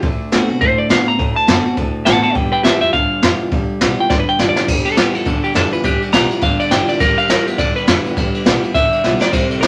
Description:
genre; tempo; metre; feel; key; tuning
rockabilly; 206 BPM; 4/4; swing 60% on 8ths; G mixolydian; A4 = 440 Hz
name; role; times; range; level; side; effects
picked steel-string acoustic guitar; accompaniment; 0.0-9.7 s; A2 to F#4; -24 LUFS; equal; none
electric guitar through a small old amp; riff; 0.0-9.7 s; G2 to B3; -26 LUFS; equal; none
upright bass; bass; 0.0-9.7 s; G1 to C3; -29 LUFS; equal; none
jazz brush drum kit; drums; 0.0-9.7 s; crash cymbal, hi-hat, kick drum, ride cymbal, snare drum; -19 LUFS; equal; none
clean electric guitar; melody; 0.6-9.7 s; G4 to Bb5; -20 LUFS; equal; none
room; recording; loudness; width
moderate studio reverb, RT60 0.7 s; none; -15 LUFS; mono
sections
0.0-4.7 A section; 4.7-9.7 B section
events
drum fill 4.1-4.7, 9.0; clean electric guitar solo 4.7-9.7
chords
0.0 D7; 2.4 G7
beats
| 0.03 0.32 0.61 0.90 | 1.19 1.48 1.77 2.06 | 2.35 2.65 2.94 3.23 | 3.52 3.81 4.10 4.39 | 4.68 4.97 5.26 5.55 | 5.84 6.13 6.42 6.71 | 7.00 7.29 7.59 7.88 | 8.17 8.46 8.75 9.04 | 9.33 9.62

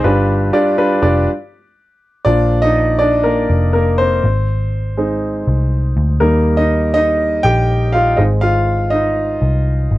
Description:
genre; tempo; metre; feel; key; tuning
piano-driven pop; 122 BPM; 4/4; straight; unclear; A4 = 440 Hz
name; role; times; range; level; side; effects
warm baby grand piano; accompaniment; 0.0-10.0 s; G2 to G5; -15 LUFS; equal; none
vintage muted picked electric bass; bass; 0.0-10.0 s; F1 to Eb2; -16 LUFS; equal; none
room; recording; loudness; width
little or no reverb; dry, close 1970s-style studio recording; -12 LUFS; side -16 dB against mid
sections
0.0-2.3 A section; 2.3-10.0 B section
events
stop 1.3-2.3; grand piano solo 2.3-10.0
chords
0.0 G7; 2.3 Bb; 4.2 Ab; 6.2 Eb; 8.2 Ab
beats
| 0.29 0.78 1.27 1.77 | 2.26 2.75 3.25 3.74 | 4.24 4.73 5.22 5.71 | 6.21 6.70 7.20 7.69 | 8.18 8.67 9.17 9.66

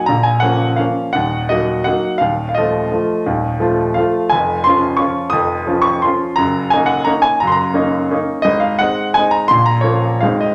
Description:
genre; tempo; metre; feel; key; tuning
classical, piano waltz; 172 BPM; 3/4; uneven beats, rubato; Db major from 4.3 s; A4 = 439 Hz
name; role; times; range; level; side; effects
clear baby grand piano; solo; 0.0-10.5 s; Eb1 to Eb6; -16 LUFS; equal; none
room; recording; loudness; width
wet large studio reverb, RT60 0.8 s; none; -16 LUFS; mono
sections
0.0-10.5 A section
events
none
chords
0.1 Bbm; 1.1 Ebm; 2.2 F7/Eb; 4.3 Db/F; 6.4 Ebm7/Gb; 8.5 Ab; 9.5 Bbm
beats
| 0.08 0.42 0.79 | 1.15 1.49 1.85 | 2.20 2.54 2.90 | 3.25 3.60 3.97 | 4.32 4.66 5.00 | 5.33 5.68 6.04 | 6.38 6.72 7.07 | 7.42 7.76 8.11 | 8.46 8.80 9.15 | 9.50 9.84 10.21

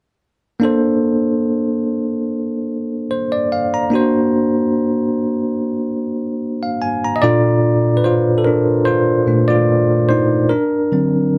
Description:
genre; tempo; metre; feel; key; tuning
soul; 73 BPM; 4/4; swing 54% on 16ths; Bb major; A4 = 444 Hz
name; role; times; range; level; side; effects
bell-like tine electric piano; solo; 0.6-11.4 s; Bb2 to Bb5; -17 LUFS; equal; none
room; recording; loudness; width
moderate booth ambience, RT60 0.2 s; dry, close 1970s-style studio recording; -17 LUFS; mono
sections
0.6-7.2 A section; 7.2-11.4 B section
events
tine electric piano solo 7.2-11.4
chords
0.6 Bbmaj9; 3.9 Daug7; 7.2 Bbmaj7; 10.5 Daug7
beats
| 0.63 1.45 2.28 3.10 | 3.92 4.75 5.57 6.39 | 7.22 8.04 8.87 9.69 | 10.52 11.34

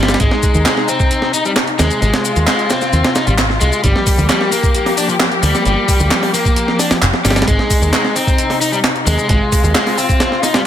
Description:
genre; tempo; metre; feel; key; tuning
breakbeat, breaks; 132 BPM; 4/4; straight; unclear; A4 = 442 Hz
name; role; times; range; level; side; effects
muted studio string section; sustained chords; 0.0-10.7 s; C3 to G4; -20 LUFS; left 4 dB; sidechain pumping
overdriven semi-hollow guitar; riff; 0.0-10.6 s; F3 to Eb4; -18 LUFS; left 1 dB; ping-pong delay
overdriven picked electric bass; bass; 0.0-9.7 s; F1 to Eb2; -16 LUFS; equal; none
breakbeat sampler-style drum kit; drums; 0.0-10.7 s; hi-hat, kick drum, snare drum; -16 LUFS; right 1 dB; none
garage drum kit; drums; 0.1-10.6 s; handclaps, hi-hat, shaker; -20 LUFS; left 1 dB; none
room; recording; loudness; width
light reverb, digital ambience; none; -12 LUFS; side -10 dB against mid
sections
0.0-10.7 A section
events
none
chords
0.2 Ab; 3.8 Gm7; 7.5 Ab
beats
| 0.20 0.66 1.11 1.57 | 2.02 2.48 2.93 3.39 | 3.84 4.29 4.75 5.20 | 5.66 6.11 6.57 7.02 | 7.48 7.93 8.39 8.84 | 9.29 9.75 10.20 10.66

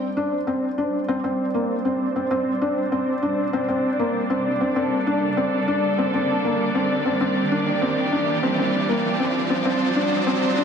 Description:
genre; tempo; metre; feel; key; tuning
piano and strings electronica; 98 BPM; 4/4; straight; G minor; A4 = 440 Hz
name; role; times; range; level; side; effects
rich symphonic string section; sustained chords; 0.0-10.6 s; G3 to D5; -24 LUFS; right 1 dB; low-pass filter
felt-muted upright piano; riff; 0.0-10.6 s; Bb3 to D4; -22 LUFS; left 1 dB; digital delay
riser; sound effects; 1.6-10.6 s; none; -30 LUFS; right 2 dB; none
room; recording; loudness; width
moderate concert hall reverb, RT60 2.1 s; high-pass filter; -20 LUFS; side -7 dB against mid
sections
0.0-10.6 A section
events
build-up 0.0-10.6; filter sweep on string section 0.0-10.6; filter sweep 0.0-10.6; riser 1.6-10.6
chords
0.0 Csus2; 4.8 Gmadd9; 9.7 Csus2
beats
0.47 1.09 1.70 | 2.31 2.92 3.54 4.15 | 4.76 5.37 5.99 6.60 | 7.21 7.82 8.43 9.05 | 9.66 10.27

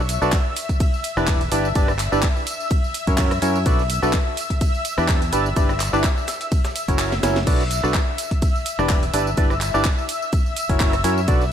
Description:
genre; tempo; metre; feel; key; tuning
piano house; 126 BPM; 4/4; swing 54% on 16ths; unclear; A4 = 440 Hz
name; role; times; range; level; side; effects
analog string pad; sustained chords; 0.0-11.5 s; E5 to E6; -28 LUFS; left 3 dB; ensemble chorus, sidechain pumping
fingered electric bass; bass; 0.0-11.5 s; E1 to F#2; -24 LUFS; equal; sidechain pumping
breakbeat sampler-style drum kit; drums; 0.1-11.5 s; hi-hat, shaker, snare drum; -36 LUFS; right 1 dB; none
house drum kit; drums; 0.1-11.5 s; crash cymbal, handclaps, hi-hat, ride cymbal, rim click, snare drum, tambourine; -28 LUFS; right 1 dB; none
percussive organ stab; riff; 0.2-11.4 s; C#4 to D5; -23 LUFS; right 1 dB; wide subtle chorus, sidechain pumping, tape echo
electronic kick drum; drums; 0.3-11.4 s; none; -20 LUFS; equal; none
room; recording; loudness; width
light reverb; none; -18 LUFS; side -9 dB against mid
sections
0.0-11.5 A section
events
kick drops out 7.0-7.5; drum fill 7.1-7.5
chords
0.0 Bm7; 0.6 Em7; 1.5 G6; 2.7 F#7; 3.7 Bm7; 4.4 Em7; 5.3 G6; 6.5 F#7; 7.5 Bm7; 8.2 Em7; 9.1 G6; 10.3 F#7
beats
0.33 0.80 1.28 | 1.75 2.23 2.71 3.18 | 3.66 4.14 4.61 5.09 | 5.57 6.04 6.52 6.99 | 7.47 7.95 8.42 8.90 | 9.37 9.85 10.33 10.80 | 11.28

